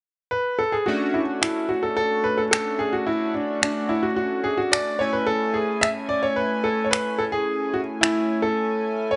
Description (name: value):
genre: dance-pop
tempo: 109 BPM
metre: 4/4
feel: straight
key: unclear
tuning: A4 = 440 Hz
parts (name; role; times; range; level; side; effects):
- clear grand piano; melody; 0.3-9.2 s; D4 to E5; -25 LUFS; equal; none
- chorused polysynth; accompaniment; 0.9-9.2 s; A3 to G#5; -30 LUFS; equal; none
- electronic finger snaps; drums; 1.4-8.2 s; none; -23 LUFS; equal; overdrive
room: light reverb, small room ambience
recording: nothing above 10.6 kHz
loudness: -23 LUFS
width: mono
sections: 0.9-9.2 A section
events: none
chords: 0.0 N.C.; 0.9 Dmaj7; 5.0 Amaj7